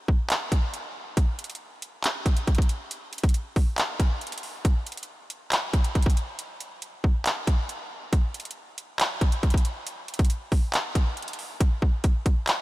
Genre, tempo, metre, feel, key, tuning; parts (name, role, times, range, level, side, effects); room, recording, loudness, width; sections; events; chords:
hip hop; 138 BPM; 4/4; half-time
trap drum kit; drums; 0.1-12.6 s; handclaps, hi-hat, kick drum; -23 LUFS; equal
light reverb; -23 LUFS; side -18 dB against mid
0.0-11.6 A section; 11.6-12.6 B section